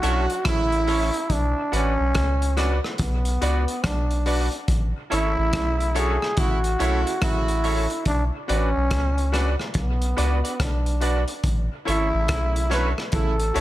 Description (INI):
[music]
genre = roots reggae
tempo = 71 BPM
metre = 4/4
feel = swing 64% on 16ths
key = A major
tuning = A4 = 440 Hz
[part]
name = growling trombone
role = melody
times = 0.0-13.6 s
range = B3 to B4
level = -26 LUFS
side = equal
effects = tape echo
[part]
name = clear horn section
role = second line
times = 0.0-13.6 s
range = C#3 to F#4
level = -31 LUFS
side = right 5 dB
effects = tape echo
[part]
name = semi-hollow electric guitar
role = accompaniment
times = 0.0-13.6 s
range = C#4 to D5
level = -31 LUFS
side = right 5 dB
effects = tape echo
[part]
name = bright grand piano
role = stabs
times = 0.0-13.6 s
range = E4 to D5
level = -32 LUFS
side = left 6 dB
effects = none
[part]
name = soft dub sub bass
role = bass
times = 0.0-13.6 s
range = G#1 to C#2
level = -23 LUFS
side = equal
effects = none
[part]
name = crunchy breakbeat drum kit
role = drums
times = 0.0-13.6 s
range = hi-hat, kick drum, rim click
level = -28 LUFS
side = equal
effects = dub echo
[sound]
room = light reverb, small room ambience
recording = none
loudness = -20 LUFS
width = side -15 dB against mid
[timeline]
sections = 0.0-13.6 A section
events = none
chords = 0.0 A; 1.3 Bm; 4.7 A; 8.1 Bm; 11.4 A